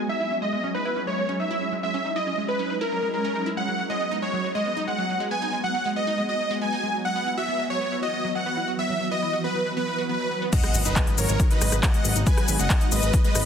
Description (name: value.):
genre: uplifting trance.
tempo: 138 BPM.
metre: 4/4.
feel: straight.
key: G# minor.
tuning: A4 = 440 Hz.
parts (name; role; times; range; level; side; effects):
shimmering ambient pad; sustained chords; 0.0-13.5 s; E3 to F#4; -31 LUFS; equal; chorus, built-in reverb, sidechain pumping.
wide unison pluck; arpeggios; 0.0-13.4 s; F#3 to F#4; -32 LUFS; right 2 dB; phaser, sidechain pumping, ping-pong delay.
supersaw chords; melody; 0.1-13.5 s; A#4 to G#5; -26 LUFS; equal; lush chorus, sidechain pumping, low-pass filter, ping-pong delay.
big-room dance drum kit; drums; 10.5-13.4 s; crash cymbal, handclaps, hi-hat, rim click, shaker; -27 LUFS; left 3 dB; overdrive.
electronic kick drum; drums; 10.5-13.2 s; none; -21 LUFS; equal; overdrive.
impact; sound effects; 10.5-12.3 s; none; -33 LUFS; left 1 dB; none.
fat analog bass; bass; 10.7-13.4 s; F#1 to G#1; -24 LUFS; equal; sidechain pumping.
room: light reverb, digital ambience.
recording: dense, heavily limited modern master.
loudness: -22 LUFS.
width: side -8 dB against mid.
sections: 0.0-10.5 A section; 10.5-13.5 B section.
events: drop 10.5-13.5; impact 10.5-12.3.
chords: 0.1 C#madd9; 3.6 G#m7; 7.0 Esus2; 10.5 G#m7.